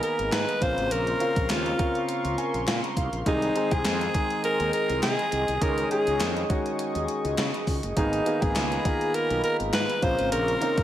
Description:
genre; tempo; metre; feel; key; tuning
1980s-style pop; 102 BPM; 4/4; swing 55% on 16ths; unclear; A4 = 440 Hz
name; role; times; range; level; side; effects
raspy alto saxophone; melody; 0.0-10.8 s; Eb4 to C5; -27 LUFS; equal; digital delay
clear concert grand piano; accompaniment; 0.0-10.8 s; Db3 to Ab5; -29 LUFS; equal; none
chorused pulse-width pad; sustained chords; 0.0-10.8 s; Ab4 to Eb6; -32 LUFS; left 1 dB; none
gated 80s digital drum machine; drums; 0.0-10.8 s; hi-hat, kick drum, snare drum; -29 LUFS; equal; gated reverb, gated reverb snare
fretless electric bass; bass; 0.2-10.8 s; Gb1 to Db3; -31 LUFS; equal; none
group handclap; percussion; 0.3-9.9 s; none; -41 LUFS; left 6 dB; none
room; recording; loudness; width
light reverb; none; -23 LUFS; side -12 dB against mid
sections
0.0-10.8 A section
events
grand piano fill 2.1-3.3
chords
0.0 Abmadd9; 0.6 Bbmadd9; 3.3 Ab/C; 5.6 Dbsus2; 8.0 Abmadd9; 10.0 Bbmadd9

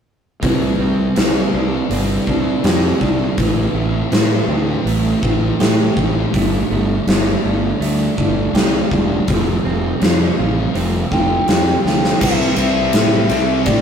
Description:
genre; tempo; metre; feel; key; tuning
rock, shoegaze and dream pop; 81 BPM; 4/4; straight; C major; A4 = 440 Hz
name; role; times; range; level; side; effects
direct-recorded clean electric guitar; arpeggios; 0.4-13.8 s; E3 to G4; -27 LUFS; right 6 dB; none
crunchy overdriven guitar; riff; 0.4-13.8 s; A2 to G4; -23 LUFS; right 6 dB; none
thick fuzz guitar; riff; 0.4-13.8 s; F2 to C4; -23 LUFS; left 4 dB; distortion
fuzz fingered electric bass; bass; 0.4-13.8 s; E1 to A2; -20 LUFS; equal; overdrive
huge arena drum kit; drums; 0.4-13.8 s; crash cymbal, hi-hat, kick drum, ride cymbal, snare drum; -18 LUFS; left 1 dB; none
mellow hollow polished pan flute; melody; 11.1-13.8 s; D5 to G5; -20 LUFS; left 3 dB; tape echo
distorted electric guitar; riff; 12.2-13.8 s; C3 to C4; -23 LUFS; equal; overdrive
room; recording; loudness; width
light reverb; rough rehearsal-room recording, warm saturation; -14 LUFS; side -7 dB against mid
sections
0.4-12.2 A section; 12.2-13.8 B section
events
drum fill 11.8-12.2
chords
0.4 Cadd9; 3.4 Am7; 6.3 Gsus2; 9.3 Fsus2; 12.2 C

